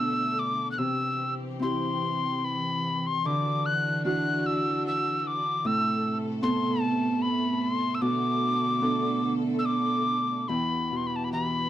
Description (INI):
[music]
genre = celtic folk, Celtic slow air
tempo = 74 BPM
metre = 3/4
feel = rubato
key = E minor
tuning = A4 = 440 Hz
[part]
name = mellow tin whistle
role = melody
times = 0.0-11.7 s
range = A5 to F#6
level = -28 LUFS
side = left 2 dB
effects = slapback echo
[part]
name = Celtic harp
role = accompaniment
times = 0.0-11.7 s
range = E2 to A4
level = -28 LUFS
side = right 2 dB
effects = none
[part]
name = bright symphonic string section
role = sustained chords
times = 0.0-11.7 s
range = C3 to A4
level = -35 LUFS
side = left 1 dB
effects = none
[sound]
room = little or no reverb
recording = dry, close 1970s-style studio recording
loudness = -25 LUFS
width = side -12 dB against mid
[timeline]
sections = 0.0-10.5 A section; 10.5-11.7 B section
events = none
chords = 0.0 Bm7; 0.8 C; 3.3 Dadd9; 5.7 Amadd9; 8.0 Bm7; 10.5 Em